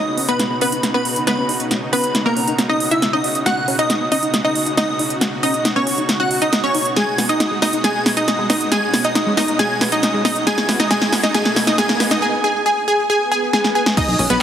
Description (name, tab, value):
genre	uplifting trance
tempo	137 BPM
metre	4/4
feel	straight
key	B major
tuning	A4 = 440 Hz
part	wide unison pluck	melody	0.0-14.4 s	A#3 to G#5	-19 LUFS	equal	sidechain pumping, digital delay
part	plucky unison lead	second line	0.0-14.4 s	A#5 to G#6	-24 LUFS	equal	sidechain pumping, digital delay
part	supersaw pad	sustained chords	0.0-14.4 s	B2 to F#4	-26 LUFS	right 1 dB	sidechain pumping
part	tight sequenced synth	arpeggios	0.0-14.3 s	G#3 to D#4	-26 LUFS	left 2 dB	chorus, phaser, sidechain pumping, digital delay
part	big-room dance drum kit	drums	0.2-14.4 s	crash cymbal, hi-hat, snare drum	-20 LUFS	equal	overdrive
part	riser, swell and impact	sound effects	10.0-14.4 s	none	-29 LUFS	right 2 dB	none
part	electronic kick drum	drums	14.0-14.1 s	none	-20 LUFS	equal	none
part	plucky analog bass	bass	14.1-14.4 s	B1	-21 LUFS	equal	sidechain pumping
room	moderate lush hall reverb, RT60 2.2 s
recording	heavily compressed radio sound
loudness	-15 LUFS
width	side -9 dB against mid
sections	0.0-14.0 A section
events	build-up 0.0-14.0; drum fill 0.0-12.2, 13.5-14.0; filter sweep on synth arpeggio sound 0.0-14.0; swell 13.2-14.0; impact 14.0-14.4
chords	0.0 Badd9; 7.0 G#m7/B; 10.5 Eadd9/B